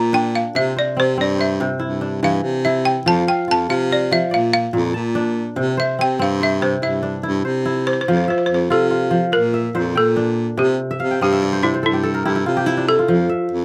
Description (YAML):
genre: west african traditional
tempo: 96 BPM (dotted quarters)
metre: 12/8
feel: straight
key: unclear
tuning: A4 = 440 Hz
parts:
  - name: balafon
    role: melody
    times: 0.0-13.6 s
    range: E4 to Bb5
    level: -22 LUFS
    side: equal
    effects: none
  - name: kora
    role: arpeggios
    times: 0.0-13.6 s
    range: Bb2 to A5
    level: -24 LUFS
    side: equal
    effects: none
  - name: warm baritone saxophone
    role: bass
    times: 0.0-13.6 s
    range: F2 to C3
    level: -24 LUFS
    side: equal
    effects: none
room: little or no reverb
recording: close, detailed microphones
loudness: -19 LUFS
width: mono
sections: 0.0-8.1 A section; 8.1-13.6 B section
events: balafon solo 0.0-8.1; kora fill 10.9-13.1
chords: 0.0 Bb; 0.6 C; 3.1 F5; 4.3 Bb; 5.6 C; 8.1 F; 9.3 Bb; 10.6 C; 13.1 F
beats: | 0.56 1.19 1.81 2.44 | 3.06 3.69 4.32 4.95 | 5.57 6.20 6.83 7.46 | 8.08 8.71 9.34 9.96 | 10.59 11.22 11.85 12.47 | 13.10